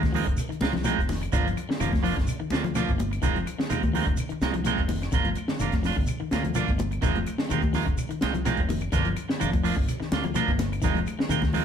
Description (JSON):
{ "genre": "afrobeat", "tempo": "126 BPM", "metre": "4/4", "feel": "straight", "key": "F dorian", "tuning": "A4 = 440 Hz", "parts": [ { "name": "electric guitar at the edge of break-up", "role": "arpeggios", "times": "0.0-11.6 s", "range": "D3 to F3", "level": "-33 LUFS", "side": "left 6 dB", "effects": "spring reverb" }, { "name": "clean electric guitar", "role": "stabs", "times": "0.0-11.6 s", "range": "Eb3 to F4", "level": "-29 LUFS", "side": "right 7 dB", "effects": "none" }, { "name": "fingered electric bass", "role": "bass", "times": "0.0-11.6 s", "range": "F1 to Eb2", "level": "-30 LUFS", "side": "equal", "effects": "none" }, { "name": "compact cocktail drum kit", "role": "drums", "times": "0.0-11.6 s", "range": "hi-hat, kick drum, snare drum", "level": "-28 LUFS", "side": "equal", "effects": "none" }, { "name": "congas", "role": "percussion", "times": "0.0-11.6 s", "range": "none", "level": "-33 LUFS", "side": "left 3 dB", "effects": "none" }, { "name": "shekere", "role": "percussion", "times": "0.1-11.6 s", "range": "none", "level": "-35 LUFS", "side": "right 3 dB", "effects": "none" }, { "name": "claves", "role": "percussion", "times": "0.4-11.4 s", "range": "none", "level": "-44 LUFS", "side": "left 7 dB", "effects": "none" } ], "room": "moderate studio reverb, RT60 0.7 s", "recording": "band playing live in one room", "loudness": "-23 LUFS", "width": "side -8 dB against mid", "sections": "0.0-11.6 A section", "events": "none", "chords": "0.0 Fm7; 1.3 Gm7; 3.2 Fm7; 5.1 Gm7; 7.0 Fm7; 8.9 Gm7; 10.8 Fm7", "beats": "0.37 0.85 | 1.32 1.80 2.28 2.75 | 3.23 3.70 4.18 4.65 | 5.13 5.60 6.08 6.55 | 7.03 7.50 7.98 8.46 | 8.93 9.41 9.88 10.36 | 10.83 11.31" }